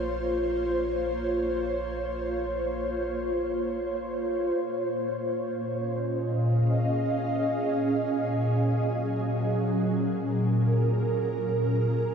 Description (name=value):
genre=ambient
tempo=free time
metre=none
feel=none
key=unclear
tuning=A4 = 439 Hz
part: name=ethereal airy pad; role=sustained chords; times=0.0-12.1 s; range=Bb2 to F5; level=-25 LUFS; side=equal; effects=ensemble chorus, built-in reverb
part: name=warm sub bass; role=bass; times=0.0-4.5 s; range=Bb1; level=-39 LUFS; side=equal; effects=none
room=wet plate reverb, RT60 2.3 s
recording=dreamy mix soaked in reverb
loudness=-25 LUFS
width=side -6 dB against mid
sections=0.0-4.6 A section; 4.6-12.1 B section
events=none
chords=0.0 Bbm; 4.6 Dbadd9/Bb; 8.0 Gbmaj7/Bb; 11.5 N.C.